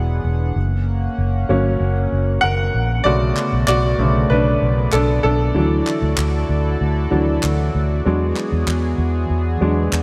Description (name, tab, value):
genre	piano-driven pop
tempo	96 BPM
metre	4/4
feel	straight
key	B minor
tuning	A4 = 438 Hz
part	clear upright piano	accompaniment	0.0-10.0 s	C#3 to F#5	-22 LUFS	equal	none
part	chorused pulse-width pad	sustained chords	0.0-10.0 s	D3 to F#5	-28 LUFS	equal	none
part	vintage muted fingered electric bass	bass	0.0-10.0 s	E1 to E2	-21 LUFS	equal	none
part	group handclap	percussion	3.4-10.0 s	none	-31 LUFS	equal	none
room	moderate lush hall reverb, RT60 2.8 s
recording	dreamy mix soaked in reverb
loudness	-18 LUFS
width	mono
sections	0.0-3.1 A section; 3.1-10.0 B section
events	upright piano solo 0.0-3.1, 3.1-10.0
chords	0.0 E7; 0.6 F#; 3.1 Bm7; 5.6 Dadd9; 8.1 E7